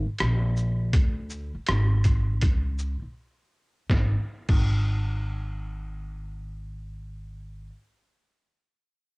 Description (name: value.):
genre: hip hop, jazz-hop.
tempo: 81 BPM.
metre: 4/4.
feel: swing 60% on 16ths.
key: unclear.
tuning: A4 = 437 Hz.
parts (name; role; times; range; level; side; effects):
upright bass; bass; 0.1-7.7 s; Ab1 to D2; -26 LUFS; equal; none.
trip hop sampler-style drum kit; drums; 0.2-4.7 s; crash cymbal, hi-hat, kick drum, rim click, shaker, snare drum; -25 LUFS; equal; cassette tape.
room: little or no reverb.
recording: home recording on cassette.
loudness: -23 LUFS.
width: side -33 dB against mid.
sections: 0.0-3.9 A section; 3.9-6.9 B section.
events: break 3.2-3.9.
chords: none.